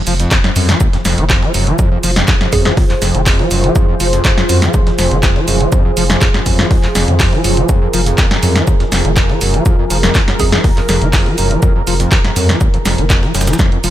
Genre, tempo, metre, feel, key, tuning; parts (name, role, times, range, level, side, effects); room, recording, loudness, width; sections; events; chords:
acid house; 122 BPM; 4/4; straight; F phrygian; A4 = 440 Hz
warm analog pad; sustained chords; 0.0-13.9 s; F3 to C5; -20 LUFS; right 1 dB; chorus, sidechain pumping
overdriven acid bass; riff; 0.1-13.9 s; Eb2 to F3; -17 LUFS; equal; distortion, ensemble chorus, sidechain pumping
saturated sub bass; bass; 0.1-13.9 s; F1 to F2; -16 LUFS; equal; tube saturation, sidechain pumping
breakbeat sampler-style drum kit; drums; 0.1-13.9 s; hi-hat, shaker, snare drum; -26 LUFS; right 2 dB; sidechain pumping on perc, high-pass filter on perc, sidechain pumping on hats, high-pass filter on hats, high-pass filter on snare
punchy analog drum machine; drums; 0.1-13.9 s; handclaps, hi-hat, snare drum; -17 LUFS; equal
electronic kick drum; drums; 0.3-13.7 s; -13 LUFS; equal
hollow square pluck; melody; 2.5-2.7, 10.4-10.6 s; Ab4; -23 LUFS; right 1 dB; chorus, dub echo
light reverb; -10 LUFS; side -12 dB against mid
0.0-13.9 A section
0.0 Fm